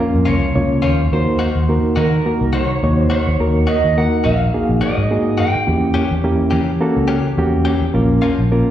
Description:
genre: blues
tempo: 106 BPM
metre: 4/4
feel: swing 55% on 16ths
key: unclear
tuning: A4 = 440 Hz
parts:
  - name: reed electric piano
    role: accompaniment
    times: 0.0-8.7 s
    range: Bb3 to Db5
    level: -18 LUFS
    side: right 1 dB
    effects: overdrive, fast tremolo, plate reverb, slapback echo
  - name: vintage muted fingered electric bass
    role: bass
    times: 0.0-8.6 s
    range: Bb1 to E3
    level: -18 LUFS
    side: equal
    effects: none
  - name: electric guitar through a small old amp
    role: melody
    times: 0.3-7.1 s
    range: Bb4 to G5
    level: -22 LUFS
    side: right 1 dB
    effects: lush chorus, slapback echo, plate reverb
  - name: direct-recorded clean electric guitar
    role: stabs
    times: 0.3-8.4 s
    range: Eb3 to G4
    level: -24 LUFS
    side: left 6 dB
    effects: spring reverb, plate reverb, slapback echo
room: light reverb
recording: live gig heard through the venue's PA, recital hall reverb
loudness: -14 LUFS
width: side -11 dB against mid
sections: 0.0-8.7 A section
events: none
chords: 0.0 Bbm; 1.1 Ebm; 5.7 Edim7; 7.9 Bbm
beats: 0.55 | 1.12 1.69 2.25 2.82 | 3.39 3.96 4.53 5.10 | 5.67 6.24 6.80 7.37 | 7.94 8.51

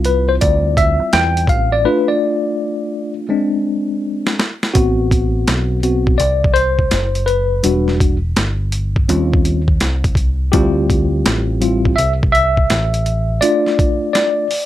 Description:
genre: hip hop, jazz-hop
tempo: 83 BPM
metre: 4/4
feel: swing 65% on 16ths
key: unclear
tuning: A4 = 442 Hz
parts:
  - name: tine electric piano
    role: accompaniment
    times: 0.0-14.7 s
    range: G3 to G5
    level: -16 LUFS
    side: left 1 dB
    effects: overdrive, fast stereo tremolo
  - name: deep dub picked electric bass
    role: bass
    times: 0.0-13.4 s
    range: E1 to E2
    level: -18 LUFS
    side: equal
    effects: none
  - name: boom bap sampler-style drum kit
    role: drums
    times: 0.0-14.7 s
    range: hi-hat, kick drum, snare drum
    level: -17 LUFS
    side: equal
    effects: none
room: light reverb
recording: none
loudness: -13 LUFS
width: side -13 dB against mid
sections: 0.0-4.7 A section; 4.7-14.7 B section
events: tine electric piano solo 0.0-4.7, 4.7-14.7; break 1.9-4.7; drum fill 3.3-4.7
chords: 0.0 Dm11; 1.9 Bm7b5/A; 3.3 G#; 4.7 Am69; 7.6 Em7; 9.1 D#13; 10.5 Dm11; 13.4 F6/A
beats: 0.41 1.13 | 1.86 2.58 3.30 4.03 | 4.75 5.47 6.19 6.92 | 7.64 8.36 9.09 9.81 | 10.53 11.25 11.98 12.70 | 13.42 14.15

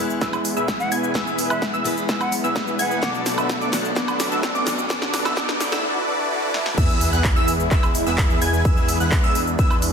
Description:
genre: EDM, festival progressive house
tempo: 128 BPM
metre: 4/4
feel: straight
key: unclear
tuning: A4 = 439 Hz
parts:
  - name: picked steel-string acoustic guitar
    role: accompaniment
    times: 0.0-5.8 s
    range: B2 to B4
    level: -29 LUFS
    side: left 2 dB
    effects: vintage 12-bit sampler grit, sidechain pumping, ping-pong delay
  - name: lush unison pad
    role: sustained chords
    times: 0.0-9.9 s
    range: G#3 to E4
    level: -30 LUFS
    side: right 1 dB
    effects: chorus, phaser, sidechain pumping
  - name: detuned saw bass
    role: bass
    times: 0.0-9.9 s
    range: B1 to E2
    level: -28 LUFS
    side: equal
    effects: sidechain pumping, high-pass filter
  - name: riser, swell and sub drop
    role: sound effects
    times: 1.7-8.7 s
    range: none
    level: -31 LUFS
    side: equal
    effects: none
  - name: big-room dance drum kit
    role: drums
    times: 0.1-9.9 s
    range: crash cymbal, handclaps, hi-hat, shaker, snare drum, woodblock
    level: -26 LUFS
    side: equal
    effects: overdrive
  - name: plucky unison lead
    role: arpeggios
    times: 0.2-9.7 s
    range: D6 to G#6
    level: -27 LUFS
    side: equal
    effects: sidechain pumping, ping-pong delay
  - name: dense compressed supersaw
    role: riff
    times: 0.2-9.7 s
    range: B3 to G#5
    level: -26 LUFS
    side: equal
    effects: sidechain pumping, low-pass filter, ping-pong delay
  - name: electronic kick drum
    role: drums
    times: 0.2-9.7 s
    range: none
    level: -21 LUFS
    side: equal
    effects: high-pass filter on kick, high-pass filter on room
  - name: breathy bright jazz flute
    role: melody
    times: 0.8-3.1 s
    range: E5 to F#5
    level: -29 LUFS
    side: left 1 dB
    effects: ping-pong delay
room: light reverb, digital ambience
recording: dense, heavily limited modern master, high-pass filter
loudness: -18 LUFS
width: side -6 dB against mid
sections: 0.0-6.8 A section; 6.8-9.9 B section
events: build-up 0.0-6.8; drum fill 0.0-5.8, 6.5; filter sweep on supersaw synth 0.0-6.8; filter sweep on digital synth lead 0.0-6.8; filter sweep on analog synth pad 0.0-6.8; swell 5.8-6.8; drop 6.8-9.9; impact 6.8-8.7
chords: 0.0 E; 3.0 Bm7; 6.8 E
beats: 0.21 0.68 | 1.15 1.62 2.09 2.56 | 3.03 3.50 3.96 4.43 | 4.90 5.37 5.84 6.31 | 6.78 7.25 7.71 8.18 | 8.65 9.12 9.59

